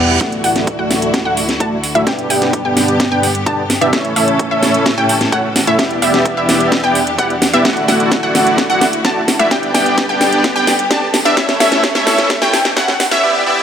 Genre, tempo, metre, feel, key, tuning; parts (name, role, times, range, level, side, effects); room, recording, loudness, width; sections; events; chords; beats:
EDM, festival progressive house; 129 BPM; 4/4; straight; D major; A4 = 443 Hz
bright studio string section; sustained chords; 0.0-13.2 s; D2 to A4; -22 LUFS; left 1 dB; sidechain pumping
dense compressed supersaw; riff; 0.0-13.6 s; A3 to A5; -15 LUFS; equal; cassette tape, sidechain pumping, low-pass filter, digital delay
reverse cymbal and riser; sound effects; 0.0-0.2, 10.1-13.6 s; -25 LUFS; right 5 dB
wide unison pluck; arpeggios; 0.2-13.2 s; E5 to A5; -18 LUFS; equal; sidechain pumping, digital delay
electronic kick drum; drums; 0.2-12.9 s; -22 LUFS; equal; high-pass filter on kick
house drum kit; drums; 0.2-13.2 s; hi-hat, snare drum; -17 LUFS; equal
moderate lush hall reverb, RT60 2.4 s; high-pass filter; -11 LUFS; side -8 dB against mid
0.2-13.6 A section
reverse cymbal 0.0; build-up 0.2-13.6; drum fill 0.2-13.2; filter sweep on supersaw synth 0.2-13.6; filter sweep on synth pluck 0.2-13.6
0.2 Dadd9; 2.1 G; 3.9 A; 5.8 Em7; 7.7 Dadd9; 9.5 G; 11.4 A
| 0.21 0.67 1.14 1.60 | 2.07 2.54 3.00 3.46 | 3.93 4.39 4.86 5.33 | 5.79 6.26 6.72 7.19 | 7.65 8.12 8.58 9.05 | 9.51 9.98 10.44 10.91 | 11.37 11.84 12.30 12.77 | 13.23